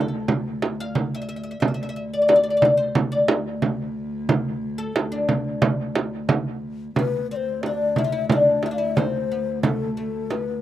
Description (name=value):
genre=Turkish makam ensemble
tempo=90 BPM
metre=4/4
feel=straight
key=D makam huseyni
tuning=A4 = 440 Hz
part: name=oud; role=melody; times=0.0-10.6 s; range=A3 to F5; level=-22 LUFS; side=left 2 dB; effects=slapback echo
part: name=dark cello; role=drone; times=0.0-10.6 s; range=D2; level=-30 LUFS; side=equal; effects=stereo widening
part: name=frame drum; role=percussion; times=0.3-10.5 s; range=none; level=-22 LUFS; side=right 3 dB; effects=none
part: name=breathy mellow ney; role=second line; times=7.0-10.6 s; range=A4 to F5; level=-27 LUFS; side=left 10 dB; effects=slapback echo
room=little or no reverb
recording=recorded outdoors, with no room sound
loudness=-20 LUFS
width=side -12 dB against mid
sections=0.0-7.0 A section; 7.0-10.6 B section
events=none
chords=none